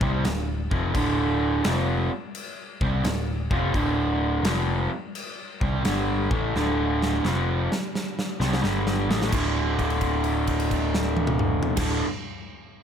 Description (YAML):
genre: blues rock power trio and southern rock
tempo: 86 BPM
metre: 4/4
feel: swing 67% on 8ths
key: D minor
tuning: A4 = 440 Hz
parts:
  - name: raw garage guitar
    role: riff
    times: 0.0-12.0 s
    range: D2 to C4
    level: -25 LUFS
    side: right 1 dB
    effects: overdrive
  - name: picked electric bass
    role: bass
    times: 0.0-12.0 s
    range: D1 to C2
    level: -27 LUFS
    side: equal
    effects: none
  - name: big rock drum kit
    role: drums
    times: 0.0-11.9 s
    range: crash cymbal, kick drum, snare drum, toms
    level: -28 LUFS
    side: equal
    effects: none
room: light reverb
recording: none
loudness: -22 LUFS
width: side -8 dB against mid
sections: 0.0-9.3 A section; 9.3-12.1 B section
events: drum fill 6.5-9.3; held note 9.3-11.7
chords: 0.0 Dm; 9.3 D5